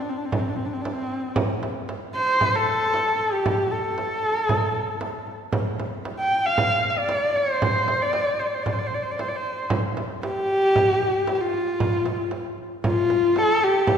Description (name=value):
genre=mongolian traditional, Mongolian folk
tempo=115 BPM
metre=4/4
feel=straight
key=F gong mode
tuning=A4 = 439 Hz
part: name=warm horsehead fiddle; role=melody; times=0.0-14.0 s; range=C4 to G5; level=-22 LUFS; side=equal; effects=none
part: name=frame drum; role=percussion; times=0.1-14.0 s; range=none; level=-27 LUFS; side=right 2 dB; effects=none
room=wet concert hall reverb, RT60 2.0 s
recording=recorded in a church or concert hall, lossy compression artefacts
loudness=-21 LUFS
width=side -8 dB against mid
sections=0.0-12.8 A section; 12.8-14.0 B section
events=none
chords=none